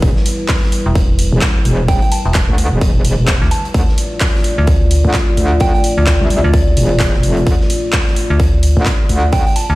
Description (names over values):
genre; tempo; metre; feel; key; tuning
bass house; 129 BPM; 4/4; swing 60% on 16ths; unclear; A4 = 438 Hz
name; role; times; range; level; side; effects
dark analog pad; sustained chords; 0.0-9.8 s; G3 to D5; -21 LUFS; left 1 dB; chorus, sidechain pumping
metallic wobble bass; bass; 0.0-9.4 s; E1 to D2; -14 LUFS; equal; distortion, chorus, overdrive, sidechain pumping
electronic kick drum; drums; 0.0-9.4 s; none; -14 LUFS; equal; overdrive, small room ambience
raw garage drum kit; drums; 0.0-9.7 s; hi-hat, snare drum; -29 LUFS; right 1 dB; high-pass filter on hats, small room ambience, high-pass filter on snare, high-pass filter on room
big-room dance drum kit; drums; 0.3-9.7 s; handclaps, hi-hat; -22 LUFS; equal; overdrive, small room ambience
metallic FM bass; bass; 0.9-9.8 s; E1 to D2; -13 LUFS; equal; overdrive, sidechain pumping
soft synth bell; melody; 1.9-9.8 s; D5 to A5; -24 LUFS; right 3 dB; chorus, ping-pong delay
room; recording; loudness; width
light reverb, digital ambience; played on a big sound system in a bare room, stone room reverb; -11 LUFS; side -19 dB against mid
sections
0.0-9.8 A section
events
none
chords
0.0 Em; 3.7 Dm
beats
| 0.02 0.49 0.95 1.42 | 1.89 2.35 2.81 3.28 | 3.75 4.21 4.68 5.14 | 5.61 6.07 6.54 7.00 | 7.47 7.93 8.40 8.86 | 9.33